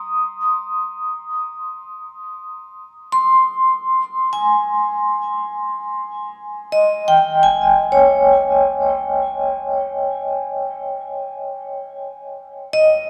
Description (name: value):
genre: ambient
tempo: 50 BPM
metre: 4/4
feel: straight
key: unclear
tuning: A4 = 440 Hz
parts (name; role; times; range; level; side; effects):
- vibraphone with medium hard mallets; solo; 0.0-13.1 s; Db5 to Eb6; -19 LUFS; equal; diffuse ambient delay
room: wet concert hall reverb, RT60 2.1 s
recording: none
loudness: -18 LUFS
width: mono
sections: 0.0-13.1 A section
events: none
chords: 0.0 Dbsus2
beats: 0.73 1.93 3.13 | 4.33 5.53 6.73 7.93 | 9.13 10.33 11.53 12.73